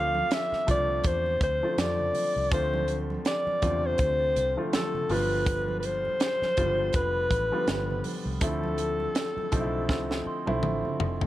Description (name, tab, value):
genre	lush 1970s-style soul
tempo	81 BPM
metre	4/4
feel	swing 58% on 16ths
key	D dorian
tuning	A4 = 440 Hz
part	mellow alto saxophone	melody	0.0-10.6 s	A4 to F5	-28 LUFS	left 1 dB	slapback echo
part	warm concert grand piano	accompaniment	0.0-11.3 s	B2 to F4	-32 LUFS	equal	none
part	vintage muted fingered electric bass	bass	0.0-11.3 s	F1 to F2	-32 LUFS	equal	none
part	glockenspiel with rubber mallets	texture	0.0-2.1, 6.9-11.3 s	B5 to D6	-43 LUFS	right 5 dB	none
part	congas	percussion	0.1-11.2 s	none	-40 LUFS	right 4 dB	none
part	tight funk drum kit	drums	0.3-11.3 s	hi-hat, kick drum, snare drum, toms	-29 LUFS	equal	none
room	studio ambience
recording	none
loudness	-25 LUFS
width	side -15 dB against mid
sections	0.0-11.3 A section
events	drum fill 9.9-11.3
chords	0.0 Dm7; 5.1 G7; 8.4 Dm9